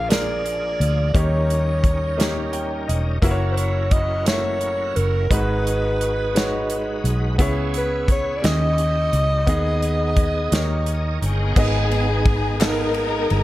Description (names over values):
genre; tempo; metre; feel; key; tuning
slow gospel; 58 BPM (dotted quarters); 6/8; straight; G# minor; A4 = 440 Hz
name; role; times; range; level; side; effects
warm alto saxophone; melody; 0.0-11.2 s; A#4 to E#5; -24 LUFS; equal; none
bright baby grand piano; accompaniment; 0.0-13.4 s; G#2 to G5; -27 LUFS; equal; none
bright tonewheel organ; sustained chords; 0.0-13.4 s; E#3 to G5; -30 LUFS; right 3 dB; slow rotary speaker, overdrive, chorus vibrato
fingered electric bass; bass; 0.0-13.4 s; E1 to D#2; -22 LUFS; equal; none
natural country drum kit; drums; 0.1-13.4 s; crash cymbal, hi-hat, kick drum, ride cymbal, snare drum; -22 LUFS; equal; none
warm studio string section; melody; 11.2-13.4 s; B3 to A#4; -23 LUFS; left 2 dB; none
group handclap; percussion; 12.6-12.9 s; none; -30 LUFS; left 5 dB; none
room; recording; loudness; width
studio reverb; none; -18 LUFS; side -16 dB against mid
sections
0.0-11.6 A section; 11.6-13.4 B section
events
grand piano fill 2.2-3.2; tonewheel organ fill 10.5-11.6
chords
0.0 A#7; 1.1 D#7; 3.2 F#7; 5.3 G#m7; 7.4 C#m7; 8.4 D#7b9; 9.5 G#m/D#; 10.5 D#7; 11.6 G#m